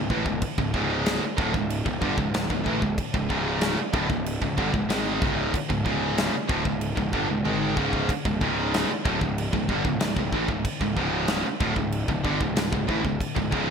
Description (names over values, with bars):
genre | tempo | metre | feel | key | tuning
heavy metal | 94 BPM | 4/4 | straight | unclear | A4 = 440 Hz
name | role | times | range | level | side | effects
heavy high-gain guitar | riff | 0.0-13.7 s | C#2 to G#3 | -29 LUFS | right 10 dB | distortion
high-gain distorted guitar | riff | 0.0-13.7 s | C#2 to G#3 | -31 LUFS | equal | distortion
tight distorted guitar | riff | 0.0-13.7 s | C#2 to G#3 | -32 LUFS | left 12 dB | distortion
fuzz picked electric bass | bass | 0.0-13.7 s | C#1 to A1 | -30 LUFS | left 1 dB | overdrive
big rock drum kit | drums | 0.1-13.7 s | crash cymbal, kick drum, snare drum, toms | -28 LUFS | left 1 dB | gated reverb
room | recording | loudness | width
light reverb | bright 1980s-style digital production | -23 LUFS | side -6 dB against mid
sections
0.0-13.7 A section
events
drum fill 7.5-8.1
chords
0.0 C#m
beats
| 0.42 1.06 1.70 2.33 | 2.97 3.61 4.25 4.89 | 5.53 6.17 6.81 7.45 | 8.09 8.73 9.37 10.01 | 10.65 11.29 11.93 12.56 | 13.20